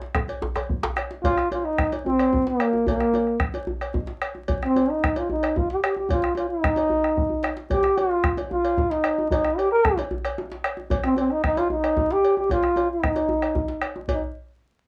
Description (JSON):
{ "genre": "west african traditional, West African drum ensemble", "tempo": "149 BPM (dotted quarters)", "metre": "12/8", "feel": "straight", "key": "Eb major pentatonic", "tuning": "A4 = 440 Hz", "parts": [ { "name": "djembe", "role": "percussion", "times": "0.0-14.2 s", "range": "none", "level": "-35 LUFS", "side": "equal", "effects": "none" }, { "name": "bombo", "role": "percussion", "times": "0.1-14.2 s", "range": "none", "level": "-29 LUFS", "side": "equal", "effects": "none" }, { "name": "djembe", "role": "percussion", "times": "0.2-1.0 s", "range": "none", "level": "-32 LUFS", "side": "equal", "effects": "none" }, { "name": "cowbell", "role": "percussion", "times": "0.3-14.2 s", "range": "none", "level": "-35 LUFS", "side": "equal", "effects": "none" }, { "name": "warm trombone", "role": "melody", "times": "1.2-14.2 s", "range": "Bb3 to Bb4", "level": "-24 LUFS", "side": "equal", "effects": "none" } ], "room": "light reverb", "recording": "dry, gritty hardware recording, vinyl crackle, small room ambience", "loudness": "-23 LUFS", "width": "mono", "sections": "0.0-1.2 A section; 1.2-14.1 B section", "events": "speeding up 0.0-14.9; drum fill 0.0-1.2, 7.2-7.7", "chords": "none" }